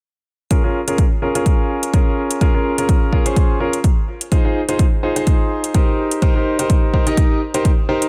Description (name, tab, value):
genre	piano house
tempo	126 BPM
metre	4/4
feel	swing 55% on 16ths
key	Bb dorian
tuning	A4 = 441 Hz
part	clear concert grand piano	riff	0.5-8.1 s	Db4 to Eb5	-22 LUFS	equal	vintage 12-bit sampler grit, sidechain pumping, low-pass filter, tape echo
part	electronic hi-hat	drums	0.5-8.1 s	none	-28 LUFS	equal	overdrive
part	electronic kick drum	drums	0.5-7.8 s	none	-18 LUFS	equal	none
room	light reverb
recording	none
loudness	-17 LUFS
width	mono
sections	0.5-8.1 A section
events	none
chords	0.5 Bbm7; 4.3 Fm7; 6.0 Cm7